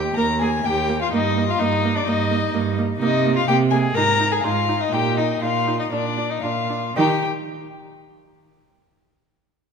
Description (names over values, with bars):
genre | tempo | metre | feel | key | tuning
quick classical-period movement for string quartet | 109-129 BPM | 4/4 | rubato | Eb major | A4 = 440 Hz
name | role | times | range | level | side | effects
dark violin | melody | 0.0-7.2 s | D5 to Bb5 | -23 LUFS | left 7 dB | none
dark violin | second line | 0.0-7.2 s | D4 to Bb4 | -25 LUFS | left 2 dB | none
rich cello | bass | 0.0-7.2 s | Eb2 to Eb3 | -23 LUFS | right 6 dB | none
warm viola | accompaniment | 0.2-7.2 s | Bb3 to Eb4 | -26 LUFS | right 3 dB | none
room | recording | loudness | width
moderate concert hall reverb, RT60 2.1 s | none | -18 LUFS | side -6 dB against mid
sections
0.0-7.0 A section; 7.0-9.0 B section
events
none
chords
0.0 Eb; 1.1 Eb/G; 3.0 Abadd9/C; 4.0 Bb7sus4/Ab; 4.9 Eb5/Bb; 5.9 Bb; 7.0 Eb